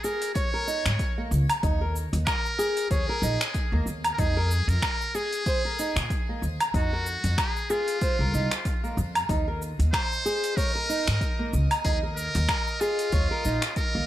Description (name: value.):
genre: organic downtempo.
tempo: 94 BPM.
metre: 4/4.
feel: swing 57% on 16ths.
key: Eb dorian.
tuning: A4 = 440 Hz.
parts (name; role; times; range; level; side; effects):
trumpet with metal mute; melody; 0.0-14.1 s; F4 to Db5; -31 LUFS; equal; tape echo.
flamenco guitar; arpeggios; 0.0-14.1 s; Bb3 to Db5; -30 LUFS; equal; tape echo.
deep house drum kit; drums; 0.0-13.9 s; cabasa, finger snaps, hi-hat, woodblock; -30 LUFS; equal; overdrive.
electronic kick drum; drums; 0.4-13.9 s; none; -29 LUFS; equal; overdrive.
upright bass; bass; 0.9-14.0 s; Bb1 to Bb2; -26 LUFS; equal; sidechain pumping.
drifting glass-harmonics texture; texture; 9.6-14.1 s; Eb5; -41 LUFS; right 6 dB; chorus, built-in reverb.
room: light reverb.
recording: none.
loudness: -23 LUFS.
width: side -13 dB against mid.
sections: 0.0-14.1 A section.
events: none.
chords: 0.0 Eb7(no3); 4.2 Fm7; 9.3 Ebsus4.